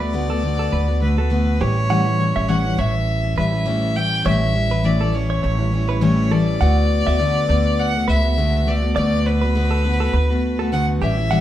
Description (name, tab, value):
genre	acoustic pop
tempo	102 BPM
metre	4/4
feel	swing 55% on 16ths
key	D major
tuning	A4 = 440 Hz
part	clear violin	melody	0.0-11.4 s	B4 to G5	-24 LUFS	left 2 dB	none
part	picked steel-string acoustic guitar	accompaniment	0.0-11.4 s	A2 to F#4	-20 LUFS	left 1 dB	none
part	direct-recorded clean electric guitar	arpeggios	0.0-11.4 s	G4 to F#5	-28 LUFS	right 4 dB	none
part	upright bass	bass	0.0-11.4 s	A1 to D2	-21 LUFS	right 1 dB	none
room	moderate large studio reverb, RT60 0.9 s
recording	band playing live in one room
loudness	-16 LUFS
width	side -12 dB against mid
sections	0.0-6.6 A section; 6.6-11.4 B section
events	none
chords	0.0 D6; 1.6 A7; 6.6 D6